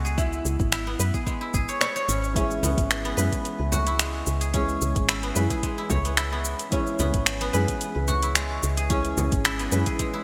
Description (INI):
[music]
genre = organic downtempo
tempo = 110 BPM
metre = 4/4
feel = swing 54% on 16ths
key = C# minor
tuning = A4 = 440 Hz
[part]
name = oud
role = melody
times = 0.0-2.3 s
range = E4 to C#5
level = -36 LUFS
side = equal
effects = delay
[part]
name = guzheng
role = arpeggios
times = 0.0-10.2 s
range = G#3 to C#5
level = -32 LUFS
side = equal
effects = delay
[part]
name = woody FM bass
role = bass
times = 0.0-9.8 s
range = G#1 to F#2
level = -29 LUFS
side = equal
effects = none
[part]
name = quartz singing bowl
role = texture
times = 0.0-10.2 s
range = B3 to E5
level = -40 LUFS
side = equal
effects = none
[part]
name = deep house drum kit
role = drums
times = 0.1-10.1 s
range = cabasa, finger snaps, hi-hat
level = -30 LUFS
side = equal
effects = studio reverb, gated reverb
[part]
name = electronic kick drum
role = drums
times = 0.2-10.1 s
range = none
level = -30 LUFS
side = equal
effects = studio reverb
[part]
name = felt-muted upright piano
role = accompaniment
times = 2.3-10.2 s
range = E3 to G#4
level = -33 LUFS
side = equal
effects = subtle chorus, sidechain pumping, delay
[part]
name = frame drum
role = percussion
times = 2.6-9.3 s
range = none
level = -37 LUFS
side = equal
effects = none
[sound]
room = moderate lush hall reverb, RT60 2.3 s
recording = bright 1980s-style digital production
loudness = -25 LUFS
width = mono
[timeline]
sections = 0.0-10.2 A section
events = none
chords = 0.0 C#m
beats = | 0.18 0.72 1.27 1.81 | 2.36 2.90 3.45 4.00 | 4.54 5.09 5.63 6.18 | 6.72 7.27 7.81 8.36 | 8.90 9.45 10.00